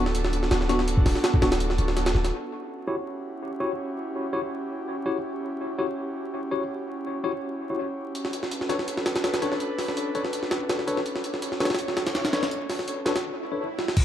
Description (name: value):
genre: drum and bass, jungle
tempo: 165 BPM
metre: 4/4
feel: swing 54% on 16ths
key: E dorian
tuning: A4 = 440 Hz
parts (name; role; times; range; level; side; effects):
- airy breathy pad; sustained chords; 0.0-14.0 s; B3 to C#5; -32 LUFS; equal; chorus
- tine electric piano; stabs; 0.0-13.6 s; B3 to C#5; -30 LUFS; left 2 dB; fast stereo tremolo, low-pass filter, dub echo
- warm 808-style bass; bass; 0.0-2.3 s; D1; -26 LUFS; equal; none
- jungle sampler-style drum kit; drums; 0.1-2.3, 8.1-14.0 s; crash cymbal, hi-hat, kick drum, snare drum; -26 LUFS; right 1 dB; dub echo
- swell and sub drop; sound effects; 13.4-14.0 s; none; -34 LUFS; right 3 dB; none
room: moderate plate reverb, RT60 1.8 s, digital ambience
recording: echo-heavy mix, vinyl crackle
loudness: -25 LUFS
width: side -11 dB against mid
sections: 0.0-2.3 A section; 2.3-14.0 B section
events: drop 0.0-2.3; break 1.6-2.3, 13.2-14.0; swell 13.4-14.0; drum fill 13.8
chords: 0.0 D6; 2.3 Em69; 8.2 Bm9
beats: 0.15 0.51 | 0.88 1.24 1.60 1.97 | 2.33 2.69 3.06 3.42 | 3.79 4.15 4.51 4.88 | 5.24 5.60 5.97 6.33 | 6.70 7.06 7.42 7.79 | 8.15 8.51 8.88 9.24 | 9.60 9.97 10.33 10.70 | 11.06 11.42 11.79 12.15 | 12.51 12.88 13.24 13.60 | 13.97